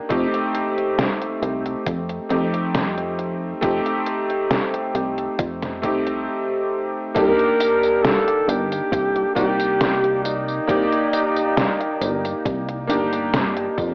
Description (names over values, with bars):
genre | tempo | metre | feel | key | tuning
vaporwave | 68 BPM | 4/4 | straight | C dorian | A4 = 440 Hz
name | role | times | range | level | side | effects
bright electric grand piano | accompaniment | 0.0-13.9 s | A3 to D5 | -25 LUFS | equal | lush chorus, cassette tape, analog delay
chorused synth bass | bass | 0.1-13.9 s | G1 to F2 | -29 LUFS | equal | none
detuned 8-bit digital drum machine | drums | 0.1-13.9 s | hi-hat, snare drum, tambourine | -26 LUFS | equal | vintage 12-bit sampler grit, studio reverb, cassette tape
electronic kick drum | drums | 0.1-13.9 s | none | -33 LUFS | equal | vintage 12-bit sampler grit, studio reverb, cassette tape
warm alto saxophone | melody | 7.2-12.9 s | Eb4 to Bb4 | -24 LUFS | equal | vintage 12-bit sampler grit, tape echo
room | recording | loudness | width
moderate spring reverb, RT60 2.4 s | home recording on cassette, AM radio sound | -21 LUFS | mono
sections
0.0-7.2 A section; 7.2-13.9 B section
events
none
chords
0.1 F7; 7.2 Cm9